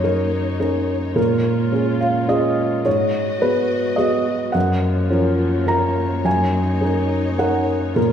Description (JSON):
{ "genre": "neoclassical piano and strings", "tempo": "106 BPM", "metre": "3/4", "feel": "rubato", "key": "unclear", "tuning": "A4 = 439 Hz", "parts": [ { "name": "felt-muted upright piano", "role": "accompaniment", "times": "0.0-8.1 s", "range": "F#2 to A#5", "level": "-17 LUFS", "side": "equal", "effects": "none" }, { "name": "rich chamber string section", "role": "sustained chords", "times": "0.0-8.1 s", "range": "E#3 to D#5", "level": "-28 LUFS", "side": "left 2 dB", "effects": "none" } ], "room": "wet recital hall reverb, RT60 1.7 s", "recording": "recorded in a church or concert hall", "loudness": "-17 LUFS", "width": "side -8 dB against mid", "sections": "0.0-8.1 A section", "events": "none", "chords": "0.0 D#m7/F#; 1.2 A#m7; 2.9 G#m7; 4.5 F#maj7; 6.3 D#m7/F#" }